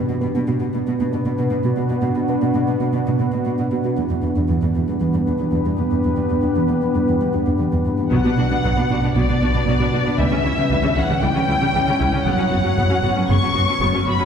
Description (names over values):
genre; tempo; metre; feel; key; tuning
cinematic; 116 BPM; 4/4; straight; B minor; A4 = 440 Hz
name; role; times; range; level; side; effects
deep dark ambient pad; sustained chords; 0.0-14.2 s; G3 to C#5; -22 LUFS; left 1 dB; chorus, built-in reverb
harp-like synth pluck; arpeggios; 0.0-14.2 s; C#3 to B4; -26 LUFS; right 3 dB; chorus, ping-pong delay
dark symphonic cello section; bass; 0.1-14.2 s; E2 to C#3; -22 LUFS; right 1 dB; none
warm symphonic violin section; melody; 8.1-14.2 s; D5 to C#6; -22 LUFS; left 3 dB; none
rich symphonic viola section; accompaniment; 8.1-14.2 s; C#3 to F#4; -26 LUFS; equal; none
rich symphonic double bass section; bass; 8.1-14.1 s; F#1 to C#2; -22 LUFS; equal; none
room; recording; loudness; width
wet scoring stage reverb, RT60 1.6 s; heard from further back in the room; -17 LUFS; side -7 dB against mid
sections
0.0-8.1 A section; 8.1-14.2 B section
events
build-up 0.0-8.1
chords
0.0 Bm; 4.0 Em7; 8.1 Bm; 10.2 C#dim; 12.3 F#sus4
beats
0.36 0.88 1.40 | 1.92 2.43 2.95 3.47 | 3.98 4.50 5.02 5.54 | 6.05 6.57 7.09 7.61 | 8.12 8.64 9.16 9.67 | 10.19 10.71 11.23 11.74 | 12.26 12.78 13.29 13.81